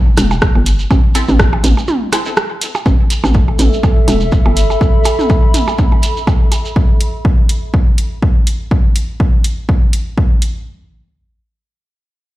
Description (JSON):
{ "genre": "minimal techno", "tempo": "123 BPM", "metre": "4/4", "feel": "swing 56% on 16ths", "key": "unclear", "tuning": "A4 = 437 Hz", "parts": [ { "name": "hollow knocking FM bass", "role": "bass", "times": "0.2-4.8 s", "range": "E1 to A1", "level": "-14 LUFS", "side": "equal", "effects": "sidechain pumping" }, { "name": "garage drum kit", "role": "drums", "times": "0.2-10.5 s", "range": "hi-hat, rim click", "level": "-19 LUFS", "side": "right 1 dB", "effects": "none" }, { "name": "electronic toms and percussion blips", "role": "percussion", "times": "0.2-6.6 s", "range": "none", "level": "-20 LUFS", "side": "right 2 dB", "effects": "ping-pong delay" }, { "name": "shekere", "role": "percussion", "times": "0.2-6.7 s", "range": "none", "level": "-25 LUFS", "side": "right 4 dB", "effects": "none" }, { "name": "electronic kick drum", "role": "drums", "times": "0.4-10.3 s", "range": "none", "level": "-12 LUFS", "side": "equal", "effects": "overdrive" }, { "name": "filtered dub chord stab", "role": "stabs", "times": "1.1-2.3 s", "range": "C4 to A4", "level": "-23 LUFS", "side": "left 1 dB", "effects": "phaser, lush chorus, ping-pong delay" }, { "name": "warbly tape-like pad", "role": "texture", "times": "3.3-6.8 s", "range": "A4 to B5", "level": "-20 LUFS", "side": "right 1 dB", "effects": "chorus, built-in reverb, sidechain pumping" } ], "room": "digital ambience", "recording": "played on a big sound system in a bare room, large studio reverb", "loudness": "-11 LUFS", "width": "side -16 dB against mid", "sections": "0.0-2.9 A section; 2.9-10.7 B section", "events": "drop 0.0-2.9; break 1.9-2.9", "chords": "0.0 Am; 2.9 A5" }